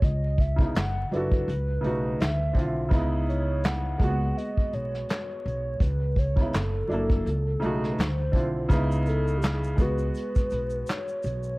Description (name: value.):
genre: lo-fi hip hop.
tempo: 83 BPM.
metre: 4/4.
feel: swing 58% on 16ths.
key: C# minor.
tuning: A4 = 440 Hz.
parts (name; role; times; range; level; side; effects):
warbly nostalgic lead; melody; 0.0-11.6 s; G4 to F#5; -32 LUFS; equal; chorus, low-pass filter.
felt-muted upright piano; accompaniment; 0.0-11.6 s; C#3 to A4; -30 LUFS; right 1 dB; cassette tape, low-pass filter.
upright bass; bass; 0.0-11.5 s; F#1 to D2; -28 LUFS; equal; none.
vintage brush drum kit; drums; 0.0-11.4 s; handclaps, hi-hat, kick drum, snare drum; -25 LUFS; equal; none.
egg shaker; percussion; 8.7-11.6 s; none; -56 LUFS; left 3 dB; none.
room: light reverb, studio reverb.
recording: worn, warbling old tape, cassette tape, vinyl crackle, warbly pitch drift.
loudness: -24 LUFS.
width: side -23 dB against mid.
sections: 0.0-11.6 A section.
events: none.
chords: 0.0 C#m9; 0.7 D69/F#; 1.5 B7/C#; 2.2 Dm9; 2.9 C#m9; 4.0 G#m7; 5.8 C#m9; 6.5 F#7alt; 7.2 B7/C#; 8.0 Dm9; 8.7 C#m9; 9.8 G#m7.